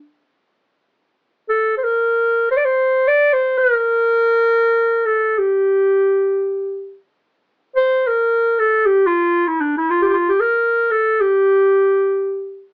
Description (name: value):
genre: Turkish makam ensemble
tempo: free time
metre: none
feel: none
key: D makam ussak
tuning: A4 = 438 Hz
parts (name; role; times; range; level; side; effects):
- warm clarinet; solo; 0.0-12.7 s; D4 to D5; -14 LUFS; equal; none
room: light reverb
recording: AM radio sound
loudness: -14 LUFS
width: side -39 dB against mid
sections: 0.9-12.7 A section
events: none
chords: none